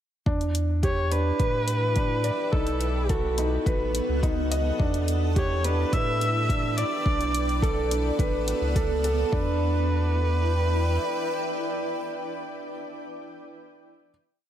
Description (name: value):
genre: piano and strings electronica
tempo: 106 BPM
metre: 4/4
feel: straight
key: E dorian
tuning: A4 = 441 Hz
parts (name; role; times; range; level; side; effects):
- granular cloud pad; sustained chords; 1.3-12.4 s; B3 to G5; -32 LUFS; equal; built-in reverb, sidechain pumping
- felt-muted upright piano; riff; 0.3-14.1 s; D4 to D#5; -30 LUFS; right 1 dB; tape echo
- warm sub bass; bass; 0.3-11.0 s; A1 to A2; -26 LUFS; equal; sidechain pumping
- electronic kick drum; drums; 0.3-9.4 s; none; -26 LUFS; equal; none
- electronic hi-hat; drums; 0.4-9.2 s; none; -34 LUFS; left 2 dB; none
- dark viola; melody; 0.8-12.3 s; F#4 to E5; -30 LUFS; right 1 dB; tape echo
room: moderate scoring stage reverb, RT60 1.7 s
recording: none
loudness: -23 LUFS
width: side -10 dB against mid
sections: 0.3-9.3 build; 9.3-11.6 final chord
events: build-up 0.3-9.3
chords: 0.3 Em7; 2.5 B7; 4.8 Em7; 7.1 Bm7; 9.3 Em7